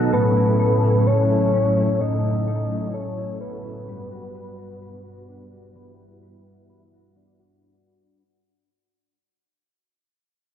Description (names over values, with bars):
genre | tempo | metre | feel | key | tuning
dream pop | 64 BPM | 4/4 | straight | unclear | A4 = 439 Hz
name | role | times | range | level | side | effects
string machine, full ensemble | sustained chords | 0.0-7.6 s | G2 to A4 | -23 LUFS | right 1 dB | ensemble chorus, low-pass filter
clean electric guitar | arpeggios | 0.0-8.2 s | A2 to B4 | -26 LUFS | left 3 dB | ensemble chorus, low-pass filter, tape echo
soft octave-layered synth lead | melody | 0.1-6.7 s | B4 to D#5 | -24 LUFS | left 1 dB | chorus, low-pass filter, tape echo
room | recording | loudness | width
moderate concert hall reverb, RT60 2.1 s | dark, warm production | -18 LUFS | side -9 dB against mid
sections
0.0-7.6 A section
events
fade-out 0.0-7.6; filter sweep 0.0-7.6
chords
0.1 A6; 3.9 Gmaj7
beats
| 0.12 1.06 2.00 2.94 | 3.88 4.81 5.75 6.69